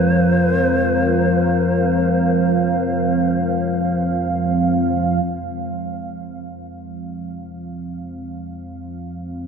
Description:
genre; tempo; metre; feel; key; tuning
dark ambient drone; free time; none; none; unclear; A4 = 440 Hz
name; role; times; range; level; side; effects
breathy mellow long shakuhachi; melody; 0.0-4.0 s; C5; -23 LUFS; right 1 dB; diffuse ambient delay
dark analog pad; sustained chords; 0.0-9.5 s; F3 to F5; -20 LUFS; right 2 dB; chorus
deep rumbling drone; drone; 0.0-9.5 s; F2 to F3; -23 LUFS; left 2 dB; built-in reverb
bronze singing bowl; texture; 0.0-5.3 s; Ab3; -36 LUFS; equal; none
room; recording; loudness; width
wet cathedral reverb, RT60 5.5 s; in a vast, echoing space; -16 LUFS; side -6 dB against mid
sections
0.0-5.3 A section; 5.3-9.5 B section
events
none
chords
0.0 F5

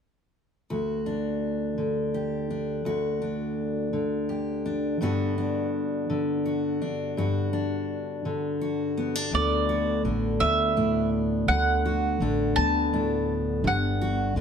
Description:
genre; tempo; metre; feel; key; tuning
acoustic folk duo or small band; 56 BPM (dotted quarters); 6/8; straight; D major; A4 = 440 Hz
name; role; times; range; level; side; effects
fingerpicked steel-string acoustic guitar; accompaniment; 0.7-14.4 s; D2 to G4; -26 LUFS; left 1 dB; none
mandolin; melody; 9.3-14.3 s; D5 to A5; -26 LUFS; right 2 dB; none
upright bass; bass; 9.3-14.4 s; G1 to D2; -29 LUFS; equal; none
room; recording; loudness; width
moderate studio ambience, RT60 0.4 s; none; -24 LUFS; side -7 dB against mid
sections
0.7-9.3 A section; 9.3-14.4 B section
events
none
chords
0.7 D; 5.0 Gmaj7; 9.3 D6; 13.6 Gmaj7

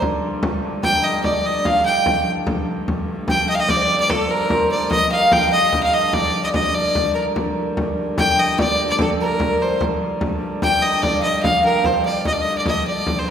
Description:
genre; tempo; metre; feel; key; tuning
medieval dance; 98 BPM (dotted quarters); 6/8; straight; G minor; A4 = 440 Hz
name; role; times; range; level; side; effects
breathy mellow alto recorder; second line; 0.0-13.3 s; A4 to G5; -25 LUFS; left 3 dB; none
hammered dulcimer; second line; 0.0-13.3 s; A4 to G5; -24 LUFS; right 4 dB; none
warm hurdy-gurdy; drone; 0.0-13.3 s; G2 to D3; -28 LUFS; left 2 dB; none
frame drum; percussion; 0.0-13.3 s; none; -23 LUFS; left 1 dB; none
bright fiddle; melody; 0.8-13.3 s; A4 to G5; -19 LUFS; equal; none
room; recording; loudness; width
wet scoring stage reverb, RT60 1.6 s; recorded in a church or concert hall; -16 LUFS; side -8 dB against mid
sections
0.0-2.5 A section; 2.5-12.3 A section; 12.3-13.3 B section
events
none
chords
none

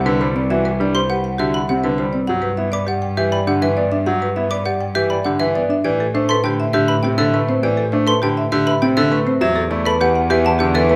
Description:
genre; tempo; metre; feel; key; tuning
classical, minimalist pattern music; 101 BPM; 3/4; straight; G major; A4 = 440 Hz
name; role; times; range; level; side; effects
marimba with medium hard mallets; melody; 0.0-11.0 s; G4 to G5; -24 LUFS; equal; none
bright concert grand piano; accompaniment; 0.0-11.0 s; C3 to B3; -23 LUFS; equal; none
mellow electric guitar; arpeggios; 0.0-11.0 s; C4 to D5; -26 LUFS; equal; none
xylophone with wooden mallets; arpeggios; 0.0-10.9 s; E5 to D6; -25 LUFS; equal; none
rich cello; bass; 0.0-11.0 s; C2 to A2; -25 LUFS; equal; none
room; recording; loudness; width
moderate large studio reverb, RT60 1.3 s; none; -18 LUFS; mono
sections
0.0-11.0 A section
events
none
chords
0.0 Cmaj9; 2.3 G6; 5.9 Am9; 9.4 Em9

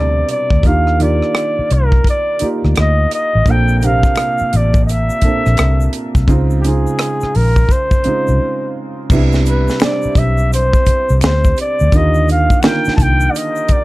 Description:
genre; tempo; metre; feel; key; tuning
R&B, neo-soul; 85 BPM; 4/4; swing 64% on 16ths; unclear; A4 = 440 Hz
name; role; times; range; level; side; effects
warm flugelhorn; melody; 0.0-13.8 s; G4 to A5; -18 LUFS; equal; none
warm upright piano; accompaniment; 0.0-13.8 s; Bb2 to Bb4; -20 LUFS; right 2 dB; none
vintage muted fingered electric bass; bass; 0.0-13.7 s; A1 to Eb2; -14 LUFS; equal; none
tight funk drum kit; drums; 0.3-13.8 s; crash cymbal, hi-hat, kick drum, rim click, snare drum; -15 LUFS; equal; none
egg shaker and finger snaps; percussion; 3.5-13.8 s; none; -33 LUFS; left 8 dB; none
room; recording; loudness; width
light reverb; dark, warm production; -11 LUFS; side -19 dB against mid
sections
0.0-9.1 A section; 9.1-13.8 B section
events
break 8.4-9.1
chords
0.0 Cmaj9; 0.6 Ebmaj9; 3.5 Bbmaj9; 6.3 Dbmaj9; 9.1 Cmaj9; 11.9 Ebmaj9

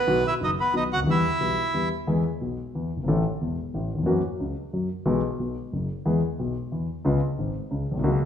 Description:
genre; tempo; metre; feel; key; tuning
tango; 181 BPM; 3/4; rubato; E major; A4 = 441 Hz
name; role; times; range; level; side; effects
bandoneon; melody; 0.0-1.9 s; B3 to F#5; -24 LUFS; right 2 dB; none
dark concert grand piano; accompaniment; 0.1-8.2 s; E1 to A4; -24 LUFS; left 1 dB; none
room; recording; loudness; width
wet large studio reverb, RT60 1.3 s; minimal, uncompressed stereo recording; -23 LUFS; side -9 dB against mid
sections
0.0-2.1 A section; 2.1-8.3 B section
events
none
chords
0.1 B; 1.1 Em; 2.1 E; 3.1 A; 4.1 F#7; 5.1 E/B; 5.4 B5; 6.1 E; 7.0 C#7

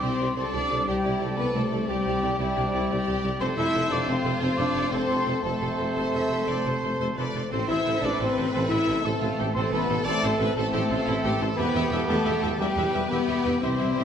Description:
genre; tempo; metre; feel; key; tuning
cinematic; 118 BPM (dotted quarters); 12/8; straight; unclear; A4 = 436 Hz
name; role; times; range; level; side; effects
warm symphonic violin section; melody; 0.0-14.0 s; G4 to E5; -35 LUFS; left 3 dB; none
silver concert flute; second line; 0.0-14.0 s; G5 to E6; -33 LUFS; left 2 dB; none
warm studio violin section; second line; 0.0-14.0 s; D4 to E5; -34 LUFS; left 1 dB; none
rich symphonic viola section; accompaniment; 0.0-14.0 s; G4 to E5; -35 LUFS; equal; none
bright trombone section; sustained chords; 0.0-14.0 s; C3 to C4; -34 LUFS; right 3 dB; none
mellow French horn section; sustained chords; 0.0-14.0 s; G3 to E4; -29 LUFS; left 2 dB; none
concert harp; arpeggios; 0.0-14.0 s; F2 to E5; -35 LUFS; left 6 dB; none
clear trumpet; stabs; 0.0-14.0 s; G4 to D5; -34 LUFS; right 1 dB; none
mellow tuba; bass; 0.0-14.0 s; E1 to C2; -34 LUFS; right 3 dB; none
warm symphonic cello section; bass; 0.0-14.0 s; G3 to E4; -33 LUFS; right 2 dB; none
warm symphonic double bass section; bass; 0.0-14.0 s; F1 to E2; -33 LUFS; right 2 dB; none
timpani; percussion; 13.6-14.0 s; none; barely audible; none; none
room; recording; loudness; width
wet recital hall reverb, RT60 1.5 s; none; -23 LUFS; side -8 dB against mid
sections
0.0-14.0 A section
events
timpani fill 13.6-14.0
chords
0.0 Cadd9; 3.4 F; 7.5 Am; 11.6 Em

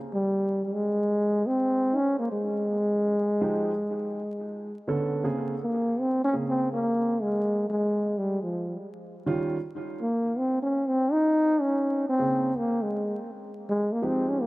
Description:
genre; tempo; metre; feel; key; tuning
hip hop; 82 BPM; 4/4; swing 65% on 16ths; Bb dorian; A4 = 440 Hz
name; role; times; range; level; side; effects
mellow trombone; melody; 0.1-14.5 s; F3 to Eb4; -24 LUFS; equal; tape echo
dark grand piano; accompaniment; 3.4-14.5 s; Db3 to A4; -31 LUFS; right 2 dB; tape echo
room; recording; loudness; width
light reverb, studio reverb; echo-heavy mix, vinyl crackle; -24 LUFS; side -20 dB against mid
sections
0.0-5.2 A section; 5.2-14.5 B section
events
trombone solo 5.2-14.5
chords
0.0 Bb7sus2 (rootless); 2.3 Fm9; 4.5 Bm9; 5.2 Bbm9; 8.2 Eb9; 11.1 Bbm9

